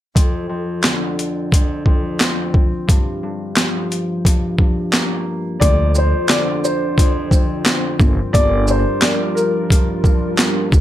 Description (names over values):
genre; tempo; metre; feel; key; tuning
hip hop, boom-bap hip-hop; 88 BPM; 4/4; swing 61% on 16ths; D minor; A4 = 440 Hz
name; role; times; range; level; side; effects
concert harp; accompaniment; 0.1-10.8 s; F2 to C4; -22 LUFS; left 1 dB; cassette tape, high-pass filter, low-pass filter, plate reverb
boom bap sampler-style drum kit; drums; 0.2-10.8 s; handclaps, hi-hat, kick drum, shaker, snare drum; -15 LUFS; equal; overdrive
dark upright piano; melody; 5.6-9.9 s; Bb4 to D5; -21 LUFS; left 1 dB; high-pass filter, low-pass filter, ping-pong delay, plate reverb
dark analog pad; sustained chords; 6.0-10.8 s; D3 to C5; -25 LUFS; right 1 dB; chorus, high-pass filter, low-pass filter, plate reverb
upright bass; bass; 5.6-10.8 s; G1 to D2; -17 LUFS; equal; none
room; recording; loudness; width
light reverb; none; -14 LUFS; side -12 dB against mid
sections
0.2-5.6 A section; 5.6-10.8 B section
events
none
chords
0.2 Dm7; 2.5 Gm7; 5.6 Dm7; 8.0 Gm7